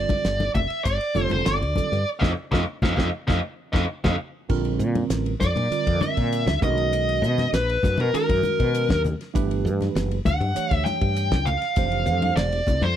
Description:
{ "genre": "electric jazz fusion", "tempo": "99 BPM", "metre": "4/4", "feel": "straight", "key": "unclear", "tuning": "A4 = 441 Hz", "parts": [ { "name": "dark smooth lead guitar", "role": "melody", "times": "0.0-13.0 s", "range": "A#4 to G5", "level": "-24 LUFS", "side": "equal", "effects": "overdrive" }, { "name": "tine electric piano", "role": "accompaniment", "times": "0.0-12.6 s", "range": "D3 to Db5", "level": "-29 LUFS", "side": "right 10 dB", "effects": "phaser" }, { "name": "woody fretless electric bass", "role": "bass", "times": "0.0-12.9 s", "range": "E1 to B2", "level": "-25 LUFS", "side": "left 1 dB", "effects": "none" }, { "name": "damped 70s drum kit", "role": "drums", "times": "0.1-13.0 s", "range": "crash cymbal, hi-hat, kick drum, ride cymbal, snare drum", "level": "-27 LUFS", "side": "equal", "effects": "none" }, { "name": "congas", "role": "percussion", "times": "0.1-13.0 s", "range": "none", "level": "-28 LUFS", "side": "left 3 dB", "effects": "none" } ], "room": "small room ambience", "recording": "dry, close 1970s-style studio recording", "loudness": "-20 LUFS", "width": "side -10 dB against mid", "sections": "0.0-4.5 A section; 4.5-13.0 B section", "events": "band accent 2.1-4.5; tine electric piano fill 2.7-4.5; drum fill 3.3-4.5", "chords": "0.0 G9sus4; 2.1 F5; 4.5 Bbadd9; 6.6 Bmaj9; 9.3 Gmaj9; 11.8 Fmaj9" }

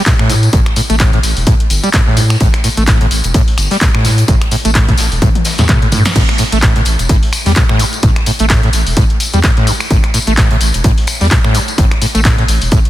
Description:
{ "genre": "acid house", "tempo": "128 BPM", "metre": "4/4", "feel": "swing 57% on 16ths", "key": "unclear", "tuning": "A4 = 440 Hz", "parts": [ { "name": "overdriven acid bass", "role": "riff", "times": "0.1-12.8 s", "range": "G2 to A3", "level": "-16 LUFS", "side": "equal", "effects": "distortion, tube saturation, wide subtle chorus, sidechain pumping, tape echo" }, { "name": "electronic kick drum", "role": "drums", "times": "0.1-12.8 s", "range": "none", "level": "-12 LUFS", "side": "equal", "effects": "none" }, { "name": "huge arena drum kit", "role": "drums", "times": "0.1-12.8 s", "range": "hi-hat, snare drum", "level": "-27 LUFS", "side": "left 3 dB", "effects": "none" }, { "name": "punchy analog drum machine", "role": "drums", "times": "0.1-12.9 s", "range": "crash cymbal, finger snaps, handclaps, hi-hat, snare drum, toms", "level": "-17 LUFS", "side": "equal", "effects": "soft clipping on snare" }, { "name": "tambourine", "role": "percussion", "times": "0.1-12.8 s", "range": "none", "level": "-22 LUFS", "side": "left 3 dB", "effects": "none" }, { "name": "saturated sub bass", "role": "bass", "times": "0.3-12.8 s", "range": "E1 to A2", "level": "-14 LUFS", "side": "equal", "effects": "tube saturation, sidechain pumping" } ], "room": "light reverb, small room ambience", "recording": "dense, heavily limited modern master", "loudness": "-9 LUFS", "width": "side -14 dB against mid", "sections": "0.0-6.2 A section; 6.2-12.9 A section", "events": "drop 0.0-6.2, 6.2-12.9; drum fill 5.2-6.2; band accent 6.0", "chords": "0.0 A5" }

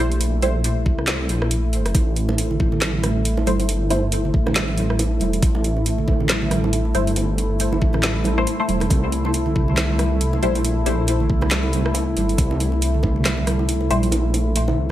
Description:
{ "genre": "deep dubstep", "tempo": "138 BPM", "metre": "4/4", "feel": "swing 58% on 16ths, half-time", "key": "A phrygian", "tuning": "A4 = 441 Hz", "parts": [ { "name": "dark analog pad", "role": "sustained chords", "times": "0.0-14.9 s", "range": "A3 to E4", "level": "-25 LUFS", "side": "left 1 dB", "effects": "chorus" }, { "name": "filtered dub chord stab", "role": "stabs", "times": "0.0-0.6, 3.5-4.0, 6.9-11.0, 13.9-14.1 s", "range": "G3 to C5", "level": "-27 LUFS", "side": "left 2 dB", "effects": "phaser, analog chorus, dub echo" }, { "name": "dark detuned saw bass", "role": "bass", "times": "0.0-14.9 s", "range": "E1 to C2", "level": "-21 LUFS", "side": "equal", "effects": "tube saturation" }, { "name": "garage drum kit", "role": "drums", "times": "0.1-14.7 s", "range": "handclaps, hi-hat, rim click, snare drum", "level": "-25 LUFS", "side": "equal", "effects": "overdrive, studio reverb" }, { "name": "electronic kick drum", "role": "drums", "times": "0.9-13.1 s", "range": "none", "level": "-19 LUFS", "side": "equal", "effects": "overdrive, studio reverb" }, { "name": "bongos and congas", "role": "percussion", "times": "1.9-14.9 s", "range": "none", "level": "-26 LUFS", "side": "right 4 dB", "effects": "dub echo" } ], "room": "digital ambience", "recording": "none", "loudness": "-18 LUFS", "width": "side -13 dB against mid", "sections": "0.0-14.9 A section", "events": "kick drops out 1.5-1.9, 14.1-14.9", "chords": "0.0 C; 1.9 Am; 8.9 C" }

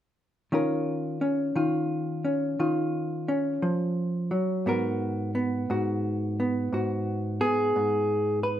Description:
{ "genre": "solo jazz", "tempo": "58 BPM", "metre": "4/4", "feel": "swing 66% on 8ths", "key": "Eb minor", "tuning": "A4 = 443 Hz", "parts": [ { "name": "hollow-body jazz guitar", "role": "solo", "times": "0.5-8.6 s", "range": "Ab2 to Cb5", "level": "-25 LUFS", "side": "equal", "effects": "none" } ], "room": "moderate large studio reverb, RT60 1.1 s", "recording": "band playing live in one room", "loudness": "-25 LUFS", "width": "side -11 dB against mid", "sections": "0.5-8.6 A section", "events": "none", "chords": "0.5 Eb7sus2; 4.7 Abm9" }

